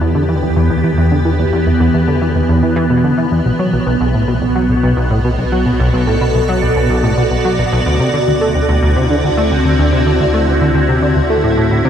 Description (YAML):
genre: ambient, sequencer-driven space music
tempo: 109 BPM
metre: 4/4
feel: straight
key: B phrygian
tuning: A4 = 442 Hz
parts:
  - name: evolving wavetable pad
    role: sustained chords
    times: 0.0-11.9 s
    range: B2 to D5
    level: -15 LUFS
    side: equal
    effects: ensemble chorus, built-in reverb, phaser
  - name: plucky analog bass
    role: riff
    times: 0.0-11.9 s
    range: B1 to A3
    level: -15 LUFS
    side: equal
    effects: analog chorus, tape echo
  - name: warm sub bass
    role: bass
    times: 0.0-11.9 s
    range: B1 to E2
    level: -19 LUFS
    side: equal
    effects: none
room: moderate huge ambient reverb, RT60 7.6 s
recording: none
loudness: -11 LUFS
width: side -9 dB against mid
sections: 0.0-11.9 A section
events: none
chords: 0.0 Em7; 3.5 Bm7; 7.9 D7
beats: 0.15 0.70 | 1.25 1.80 2.35 2.90 | 3.46 4.01 4.56 5.11 | 5.66 6.21 6.76 7.31 | 7.86 8.41 8.96 9.51 | 10.06 10.61 11.16 11.71